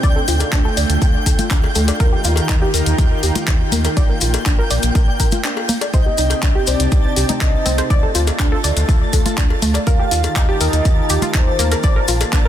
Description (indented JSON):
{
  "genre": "progressive house",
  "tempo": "122 BPM",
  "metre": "4/4",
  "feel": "straight",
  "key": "unclear",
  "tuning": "A4 = 441 Hz",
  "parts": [
    { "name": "lush unison pad", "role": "sustained chords", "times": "0.0-12.5 s", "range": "C3 to Bb4", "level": "-25 LUFS", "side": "right 1 dB", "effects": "chorus, sidechain pumping" },
    { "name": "analog pluck", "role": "arpeggios", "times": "0.0-12.5 s", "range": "A3 to D5", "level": "-23 LUFS", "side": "equal", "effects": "chorus, sidechain pumping, ping-pong delay" },
    { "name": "round analog bass", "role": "bass", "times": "0.0-12.5 s", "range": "Bb1 to Eb2", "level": "-20 LUFS", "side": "equal", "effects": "tube saturation, sidechain pumping" },
    { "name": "electronic kick drum", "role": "drums", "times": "0.0-12.4 s", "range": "none", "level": "-16 LUFS", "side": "equal", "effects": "none" },
    { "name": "pop drum kit", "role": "drums", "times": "0.0-12.4 s", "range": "handclaps, hi-hat", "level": "-24 LUFS", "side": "left 1 dB", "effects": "sidechain pumping on hats" },
    { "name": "maracas", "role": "percussion", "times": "0.0-12.4 s", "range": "none", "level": "-27 LUFS", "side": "left 4 dB", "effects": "none" },
    { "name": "twinkling granular texture", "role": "texture", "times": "0.0-12.5 s", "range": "G5 to A6", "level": "-27 LUFS", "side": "equal", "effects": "built-in reverb, sidechain pumping" },
    { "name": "cowbell and congas", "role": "percussion", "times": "0.4-12.3 s", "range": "none", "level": "-27 LUFS", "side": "left 6 dB", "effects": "sidechain pumping on perc" },
    { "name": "warm velvety synth lead", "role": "melody", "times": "5.9-12.0 s", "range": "C5 to F5", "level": "-24 LUFS", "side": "left 1 dB", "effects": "chorus, tremolo, sidechain pumping, ping-pong delay" }
  ],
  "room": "little or no reverb",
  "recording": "dense, heavily limited modern master",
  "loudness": "-14 LUFS",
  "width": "side -11 dB against mid",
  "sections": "0.0-12.5 A section",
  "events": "filter sweep on synth pluck 0.0-12.5; break 5.4-5.9",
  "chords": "0.0 Dm; 2.0 Ebadd9; 4.0 Bb; 5.9 Cmadd9; 7.9 Dm; 9.9 Ebadd9; 11.8 Bb5",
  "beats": "| 0.03 0.53 1.02 1.51 | 2.00 2.49 2.98 3.48 | 3.97 4.46 4.95 5.44 | 5.94 6.43 6.92 7.41 | 7.90 8.39 8.89 9.38 | 9.87 10.36 10.85 11.35 | 11.84 12.33"
}